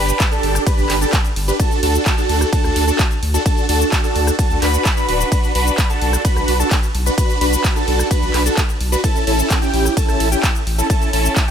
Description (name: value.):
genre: EDM, festival progressive house.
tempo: 129 BPM.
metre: 4/4.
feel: straight.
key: D major.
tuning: A4 = 440 Hz.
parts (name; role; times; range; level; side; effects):
wide unison lead; arpeggios; 0.0-11.5 s; G5 to B5; -23 LUFS; equal; sidechain pumping, tape echo.
supersaw chords; riff; 0.0-11.5 s; C#4 to B4; -20 LUFS; right 1 dB; phaser, sidechain pumping, tape echo.
saturated sub bass; bass; 0.0-11.3 s; D1 to D2; -19 LUFS; equal; tube saturation, sidechain pumping.
big-room dance drum kit; drums; 0.1-11.5 s; handclaps, hi-hat, ride cymbal, rim click, shaker; -23 LUFS; equal; none.
electronic kick drum; drums; 0.2-11.5 s; none; -18 LUFS; equal; none.
room: digital ambience.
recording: none.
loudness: -14 LUFS.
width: side -8 dB against mid.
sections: 0.0-11.5 A section.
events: none.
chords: 0.0 G; 1.6 D; 5.3 Bm; 9.0 A.